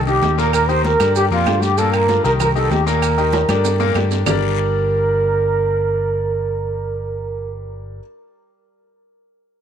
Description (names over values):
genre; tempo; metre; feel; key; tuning
latin, salsa; 193 BPM; 4/4; straight; G minor; A4 = 438 Hz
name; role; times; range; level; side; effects
bright grand piano; accompaniment; 0.0-8.0 s; Bb2 to D5; -24 LUFS; left 13 dB; none
fingered electric bass; bass; 0.0-8.0 s; G1 to G2; -21 LUFS; equal; none
mellow trombone section; melody; 0.1-7.5 s; F4 to C5; -18 LUFS; right 2 dB; none
congas; percussion; 0.1-4.3 s; none; -27 LUFS; left 1 dB; none
maracas; percussion; 0.1-4.3 s; none; -33 LUFS; right 15 dB; none
guiro; percussion; 0.2-4.3 s; none; -34 LUFS; left 14 dB; none
timbales and agogo bells; percussion; 0.2-4.3 s; none; -29 LUFS; right 13 dB; none
claves; percussion; 0.5-4.3 s; none; -31 LUFS; right 14 dB; none
room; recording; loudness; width
moderate plate reverb, RT60 3.2 s; 1960s-style stereo with parts hard left and right; -15 LUFS; side -8 dB against mid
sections
0.0-4.3 A section; 4.3-6.7 B section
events
drum fill 3.3-4.3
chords
0.0 Cm7; 0.5 Eb; 1.2 Gm; 1.8 Gm7; 2.4 Cm7; 3.0 Eb; 3.6 Gm